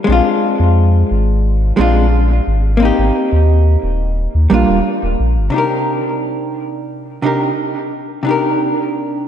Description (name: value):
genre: sunset chillout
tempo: 88 BPM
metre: 4/4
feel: straight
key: unclear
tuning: A4 = 439 Hz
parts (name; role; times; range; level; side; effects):
- vintage hollow-body jazz guitar; accompaniment; 0.0-9.3 s; C3 to Bb4; -15 LUFS; moving between left 4 dB and right 4 dB; auto-pan, vintage 12-bit sampler grit, tape echo
- warm sub bass; bass; 0.1-5.5 s; Eb1 to F2; -13 LUFS; equal; tube saturation
room: wet lush hall reverb, RT60 2.7 s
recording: dreamy mix soaked in reverb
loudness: -12 LUFS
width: side -9 dB against mid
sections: 0.0-5.5 A section; 5.5-9.3 B section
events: none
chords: 0.0 Bb7; 2.8 Abmaj7; 4.2 Ebmaj7; 5.5 Cm7